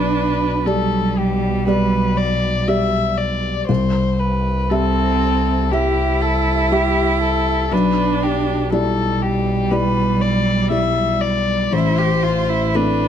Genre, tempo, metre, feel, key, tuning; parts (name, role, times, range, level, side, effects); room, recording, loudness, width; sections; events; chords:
neoclassical piano and strings; 60 BPM; 4/4; rubato; A4 = 440 Hz
muted violin; melody; 0.0-13.1 s; G4 to E5; -21 LUFS; left 5 dB
muted cello; second line; 0.0-13.1 s; G3 to G4; -22 LUFS; right 6 dB
felt-muted upright piano; accompaniment; 0.0-13.1 s; A1 to E5; -21 LUFS; left 2 dB
muted double bass; bass; 0.0-13.1 s; A1 to C2; -22 LUFS; right 1 dB
light reverb; close, detailed microphones; -16 LUFS; side -9 dB against mid
0.0-13.1 A section
0.0 G/B; 3.7 C; 7.7 Em7/B; 11.7 Am